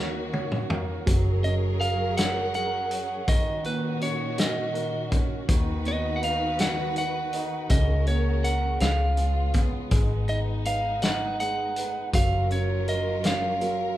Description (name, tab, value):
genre	six-eight pop ballad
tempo	54 BPM (dotted quarters)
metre	6/8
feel	straight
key	F# major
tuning	A4 = 442 Hz
part	lightly driven lead guitar	melody	0.0-14.0 s	B4 to F#5	-28 LUFS	right 1 dB	none
part	warm grand piano	accompaniment	0.0-14.0 s	A#2 to E#5	-33 LUFS	right 4 dB	none
part	warm symphonic string section	sustained chords	0.0-14.0 s	A#2 to B4	-33 LUFS	left 2 dB	none
part	vintage muted fingered electric bass	bass	0.0-14.0 s	F#1 to D#2	-27 LUFS	equal	none
part	loose indie drum kit	drums	0.3-13.8 s	hi-hat, kick drum, snare drum, toms	-27 LUFS	equal	none
room	moderate large studio reverb, RT60 0.9 s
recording	band playing live in one room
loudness	-23 LUFS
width	side -14 dB against mid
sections	0.0-14.0 A section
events	drum fill 0.0-1.1; grand piano fill 0.0-1.1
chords	0.0 D#m7; 1.1 F#add9; 3.3 D#m7; 5.5 B/D#; 7.7 F#/C#; 8.8 C#7; 9.9 G#m; 12.1 F#maj7